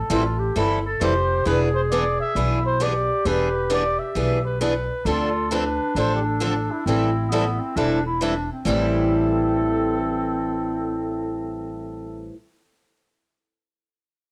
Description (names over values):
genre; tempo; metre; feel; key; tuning
acoustic string swing (jazz manouche); 133 BPM; 4/4; swing 64% on 8ths; A minor; A4 = 441 Hz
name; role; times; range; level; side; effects
breathy trumpet; melody; 0.0-12.3 s; E4 to E5; -29 LUFS; equal; none
breathy clarinet; second line; 0.1-12.3 s; B3 to A4; -30 LUFS; equal; cassette tape
picked steel-string acoustic guitar; accompaniment; 0.1-12.4 s; A2 to A4; -27 LUFS; equal; cassette tape, plate reverb
picked swing-style acoustic guitar; accompaniment; 0.1-12.4 s; A2 to B4; -34 LUFS; equal; none
upright bass; bass; 0.1-12.3 s; E1 to D2; -29 LUFS; equal; tube saturation
room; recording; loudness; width
wet studio reverb, RT60 0.5 s; home recording on cassette; -22 LUFS; mono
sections
0.0-8.7 A section; 8.7-12.3 B section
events
none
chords
0.0 Am7; 1.5 E7#9; 5.1 Dm7; 6.9 Am7